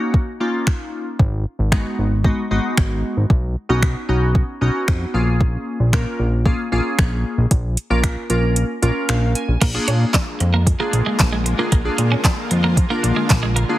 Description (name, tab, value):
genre	dance-pop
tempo	114 BPM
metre	4/4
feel	straight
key	unclear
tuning	A4 = 442 Hz
part	glassy digital keys	accompaniment	0.0-13.8 s	Ab3 to Ab5	-22 LUFS	left 1 dB	chorus, sidechain pumping
part	smooth R&B drum kit	drums	0.1-13.7 s	crash cymbal, finger snaps, handclaps, hi-hat, kick drum, snare drum	-18 LUFS	equal	overdrive
part	fat analog bass	bass	1.2-13.6 s	Ab1 to Bb2	-18 LUFS	equal	sidechain pumping
part	shimmering ambient pad	sustained chords	10.4-13.8 s	D3 to F4	-27 LUFS	equal	chorus, built-in reverb, sidechain pumping
part	twelve-string electric guitar	riff	9.6-13.6 s	Ab3 to D4	-24 LUFS	right 4 dB	lush chorus
room	light reverb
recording	heavily compressed radio sound, multiband compression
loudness	-16 LUFS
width	side -15 dB against mid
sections	0.0-9.6 A section; 9.6-13.8 B section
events	kick muted 8.6-9.6; synth keys fill 8.8-9.6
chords	0.0 Ebm7/Bb; 1.2 Abm7; 3.3 Badd9; 5.1 Bbm7; 9.6 Bb7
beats	0.14 0.67 | 1.20 1.72 2.25 2.77 | 3.30 3.83 4.35 4.88 | 5.41 5.93 6.46 6.98 | 7.51 8.04 8.56 9.09 | 9.62 10.14 10.67 11.20 | 11.72 12.25 12.77 13.30